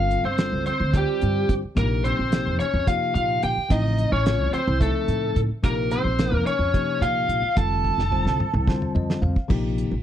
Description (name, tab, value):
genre	electric jazz fusion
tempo	217 BPM (eighths)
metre	7/8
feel	straight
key	unclear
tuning	A4 = 441 Hz
part	lead guitar through a small cranked amp	melody	0.0-9.2 s	G4 to A5	-25 LUFS	equal	overdrive
part	mellow tenor saxophone	second line	0.0-9.2 s	G3 to A4	-30 LUFS	right 2 dB	none
part	bell-like tine electric piano	accompaniment	0.0-9.9 s	C3 to F5	-29 LUFS	left 4 dB	none
part	upright bass	bass	0.0-10.0 s	F1 to Bb2	-25 LUFS	right 1 dB	none
part	damped 70s drum kit	drums	0.1-9.9 s	crash cymbal, hi-hat, kick drum, snare drum, toms	-24 LUFS	right 1 dB	none
room	studio reverb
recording	dry, close 1970s-style studio recording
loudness	-20 LUFS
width	side -10 dB against mid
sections	0.0-9.5 A section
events	drum fill 7.8-9.5; tine electric piano fill 8.7-9.5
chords	0.0 Gsus2; 1.8 Bb5; 3.7 F7b13/A; 5.6 Bbm6; 7.6 F69; 9.5 Bb5